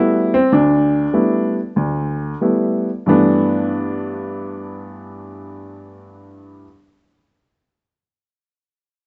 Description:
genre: solo jazz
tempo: 88-101 BPM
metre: 4/4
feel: swing 68% on 8ths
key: G major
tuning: A4 = 439 Hz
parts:
  - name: warm upright piano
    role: solo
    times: 0.0-6.7 s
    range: D2 to E4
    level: -18 LUFS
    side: equal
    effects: none
room: moderate large studio reverb, RT60 1.5 s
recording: dark, warm production, nothing above 8.0 kHz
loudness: -17 LUFS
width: mono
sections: 0.0-3.1 A section; 3.1-5.8 B section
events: slowing down 0.0-3.1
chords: 0.0 G69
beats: | 0.52 1.14 1.76 2.41 | 3.07 3.75 4.43 5.11

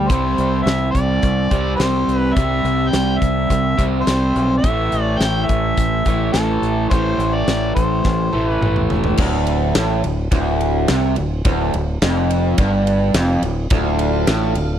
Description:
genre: classic rock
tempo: 106 BPM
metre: 4/4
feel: straight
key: D minor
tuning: A4 = 440 Hz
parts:
  - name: overdriven harmonica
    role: melody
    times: 0.0-8.9 s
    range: G4 to G5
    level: -22 LUFS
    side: left 1 dB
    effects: tape echo
  - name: raw garage guitar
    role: riff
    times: 0.0-14.8 s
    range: D2 to C4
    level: -19 LUFS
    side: right 1 dB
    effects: overdrive, spring reverb
  - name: growling fingered electric bass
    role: bass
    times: 0.0-14.8 s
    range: D1 to C2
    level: -21 LUFS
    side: equal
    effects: overdrive
  - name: huge arena drum kit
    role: drums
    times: 0.1-14.7 s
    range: crash cymbal, hi-hat, kick drum, ride cymbal, snare drum, toms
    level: -21 LUFS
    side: equal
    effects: none
  - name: tonewheel organ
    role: sustained chords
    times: 13.7-14.8 s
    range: D4 to F5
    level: -27 LUFS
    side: equal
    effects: slow rotary speaker, overdrive
room: little or no reverb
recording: dry, close 1970s-style studio recording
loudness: -15 LUFS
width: side -10 dB against mid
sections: 0.0-9.2 A section; 9.2-14.8 B section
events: drum fill 8.1-9.2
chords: 0.1 C; 4.6 Am; 9.2 Dm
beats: | 0.10 0.67 1.24 1.80 | 2.37 2.94 3.51 4.08 | 4.65 5.21 5.78 6.35 | 6.92 7.49 8.06 8.62 | 9.19 9.76 10.32 10.89 | 11.45 12.02 12.58 13.15 | 13.71 14.28

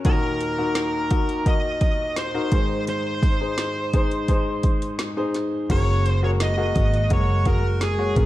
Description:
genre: piano-driven pop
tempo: 85 BPM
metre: 4/4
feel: straight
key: unclear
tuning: A4 = 438 Hz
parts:
  - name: bright baby grand piano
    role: accompaniment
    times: 0.0-8.3 s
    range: Eb2 to Db5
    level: -26 LUFS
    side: left 2 dB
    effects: none
  - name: deep house drum kit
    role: drums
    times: 0.0-8.3 s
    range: crash cymbal, hi-hat, kick drum, snare drum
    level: -22 LUFS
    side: equal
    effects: none
  - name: smooth overdriven lead guitar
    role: melody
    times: 0.1-8.3 s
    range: Ab4 to Eb5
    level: -27 LUFS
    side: right 1 dB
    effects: none
  - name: warm studio string section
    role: sustained chords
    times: 5.7-8.3 s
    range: Ab3 to Gb4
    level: -31 LUFS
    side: right 2 dB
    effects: none
  - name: vintage muted picked electric bass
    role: bass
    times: 5.7-8.3 s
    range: Gb1 to Bb1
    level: -21 LUFS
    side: equal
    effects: none
room: light reverb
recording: dark, warm production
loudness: -20 LUFS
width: side -15 dB against mid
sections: 0.0-5.7 A section; 5.7-8.3 B section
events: none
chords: 0.1 Ebm; 2.5 Ab; 5.7 Gbadd9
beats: | 0.05 0.76 1.46 2.17 | 2.87 3.58 4.29 4.99 | 5.70 6.40 7.11 7.81

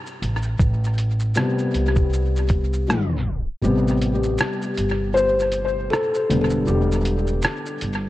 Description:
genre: lo-fi hip hop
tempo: 79 BPM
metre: 4/4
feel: swing 59% on 16ths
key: A minor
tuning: A4 = 440 Hz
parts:
  - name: felt-muted upright piano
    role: accompaniment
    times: 0.0-8.1 s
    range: C3 to C5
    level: -21 LUFS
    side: left 2 dB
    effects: cassette tape, tape echo
  - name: lo-fi sampler-style drum kit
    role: drums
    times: 0.1-8.0 s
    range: hi-hat, kick drum, rim click, shaker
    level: -26 LUFS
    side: equal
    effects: tape echo
  - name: upright bass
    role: bass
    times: 0.2-8.1 s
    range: E1 to C2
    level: -22 LUFS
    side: equal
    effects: none
  - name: finger snap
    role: percussion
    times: 4.4-7.6 s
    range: none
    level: barely audible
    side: none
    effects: none
room: light reverb, small room reverb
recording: echo-heavy mix, cassette tape, tape stop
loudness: -19 LUFS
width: side -16 dB against mid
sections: 0.0-3.6 A section; 3.6-8.1 B section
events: felt piano solo 0.0-3.6, 3.6-8.1; tape stop 2.9-3.6; kick muted 3.6-8.1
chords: 0.0 Am7; 6.3 Em7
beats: | 0.59 1.35 2.11 2.87 | 3.63 4.39 5.15 5.91 | 6.67 7.43

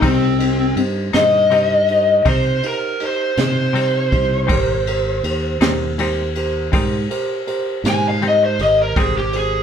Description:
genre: slow blues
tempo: 54 BPM (dotted quarters)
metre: 12/8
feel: straight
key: C minor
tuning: A4 = 440 Hz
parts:
  - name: lead guitar through a small cranked amp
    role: melody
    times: 0.0-9.6 s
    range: C4 to Ab5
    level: -17 LUFS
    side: left 2 dB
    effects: overdrive
  - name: dark grand piano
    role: accompaniment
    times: 0.0-9.6 s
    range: Eb4 to C5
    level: -24 LUFS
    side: right 3 dB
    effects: none
  - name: semi-hollow electric guitar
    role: accompaniment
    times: 0.0-9.2 s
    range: Ab2 to Eb4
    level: -24 LUFS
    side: left 4 dB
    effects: tremolo
  - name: fingered electric bass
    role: bass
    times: 0.0-9.6 s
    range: Ab1 to C3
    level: -22 LUFS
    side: right 1 dB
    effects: none
  - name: jazz brush drum kit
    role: drums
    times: 0.0-9.5 s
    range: kick drum, ride cymbal, snare drum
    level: -23 LUFS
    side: equal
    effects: none
room: moderate studio ambience, RT60 0.5 s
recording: band playing live in one room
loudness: -15 LUFS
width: side -8 dB against mid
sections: 0.0-9.6 A section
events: lead electric guitar solo 0.0-9.6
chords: 0.0 Cm; 4.5 Abmaj7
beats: | 0.03 1.14 2.26 3.38 | 4.50 5.61 6.73 7.85 | 8.96

